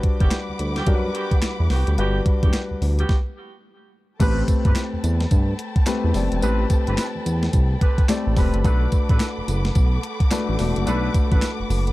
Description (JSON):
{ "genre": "R&B, new jack swing", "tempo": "108 BPM", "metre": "4/4", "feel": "swing 62% on 16ths", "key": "A dorian", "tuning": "A4 = 440 Hz", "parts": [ { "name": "dark grand piano", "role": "accompaniment", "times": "0.0-11.9 s", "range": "G3 to D5", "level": "-26 LUFS", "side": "left 3 dB", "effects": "none" }, { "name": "warm studio string section", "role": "sustained chords", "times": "0.0-11.9 s", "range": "G3 to D6", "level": "-33 LUFS", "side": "equal", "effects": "none" }, { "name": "crisp 8-bit digital drum machine", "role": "drums", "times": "0.0-11.9 s", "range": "crash cymbal, handclaps, hi-hat, kick drum, snare drum, tambourine", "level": "-20 LUFS", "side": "equal", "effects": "overdrive" }, { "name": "mellow horn section", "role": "stabs", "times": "0.2-11.5 s", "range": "B3 to B4", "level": "-32 LUFS", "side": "right 2 dB", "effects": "digital delay" }, { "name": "smooth synth bass", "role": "bass", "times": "0.2-11.9 s", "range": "E1 to G2", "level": "-21 LUFS", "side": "equal", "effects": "none" } ], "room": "little or no reverb", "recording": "dark, warm production", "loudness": "-18 LUFS", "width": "side -18 dB against mid", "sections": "0.0-4.2 A section; 4.2-11.9 B section", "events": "stop 3.1-4.2", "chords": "0.0 Gmaj7; 4.2 Am9; 8.6 Bm7" }